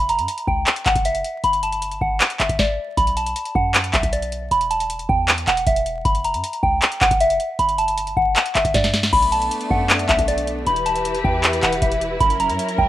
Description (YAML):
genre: hip hop, trap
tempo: 156 BPM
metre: 4/4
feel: half-time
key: B minor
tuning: A4 = 440 Hz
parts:
  - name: soft synth bell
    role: melody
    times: 0.0-12.9 s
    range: D5 to B5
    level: -20 LUFS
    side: equal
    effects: chorus, phaser, tape echo
  - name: warm 808-style bass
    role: bass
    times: 0.0-12.9 s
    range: E1 to G2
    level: -27 LUFS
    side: equal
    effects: none
  - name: booming analog drum machine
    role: drums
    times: 0.1-12.9 s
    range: crash cymbal, handclaps, hi-hat, kick drum, snare drum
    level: -20 LUFS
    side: equal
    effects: none
  - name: dark studio string section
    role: sustained chords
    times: 9.1-12.9 s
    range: E3 to B4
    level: -24 LUFS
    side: left 1 dB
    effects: none
room: digital ambience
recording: rough home demo mix, vinyl crackle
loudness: -17 LUFS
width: side -14 dB against mid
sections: 0.0-3.0 A section; 3.0-12.9 B section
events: stop 2.6-3.0; drum fill 8.7-9.1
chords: 0.0 F#; 1.4 Gsus2; 3.0 B5; 4.5 Esus4; 6.1 F#; 7.6 Gsus2; 9.1 Bm7; 10.7 Em; 12.2 F#7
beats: 0.28 0.67 1.05 | 1.44 1.82 2.21 2.59 | 2.97 3.36 3.74 4.13 | 4.51 4.90 5.28 5.67 | 6.05 6.44 6.82 7.21 | 7.59 7.97 8.36 8.74 | 9.13 9.51 9.90 10.28 | 10.67 11.05 11.44 11.82 | 12.21 12.59